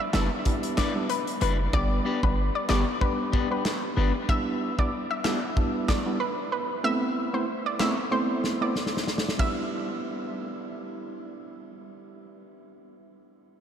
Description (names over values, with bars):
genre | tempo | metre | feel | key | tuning
dancehall | 94 BPM | 4/4 | swing 56% on 16ths | E minor | A4 = 440 Hz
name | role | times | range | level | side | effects
analog pluck | melody | 0.0-11.3 s | B4 to E5 | -31 LUFS | left 1 dB | chorus, diffuse ambient delay
percussive organ stab | accompaniment | 0.1-13.0 s | G3 to G4 | -30 LUFS | right 2 dB | chorus
electric guitar at the edge of break-up | arpeggios | 0.1-4.2 s | G3 to B4 | -34 LUFS | left 6 dB | diffuse ambient delay
hard-hitting 808-style bass | bass | 0.1-4.1 s | F#1 to G1 | -26 LUFS | equal | none
loose indie drum kit | drums | 0.1-9.6 s | handclaps, hi-hat, kick drum, ride cymbal, snare drum | -30 LUFS | equal | none
room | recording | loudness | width
wet cathedral reverb, RT60 6.8 s | dreamy mix soaked in reverb | -24 LUFS | side -8 dB against mid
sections
0.0-9.4 A section; 9.4-11.9 B section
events
drum fill 8.8-9.4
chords
0.0 Em7; 1.7 G; 4.3 Em7/G; 6.8 Amadd9; 9.4 Em7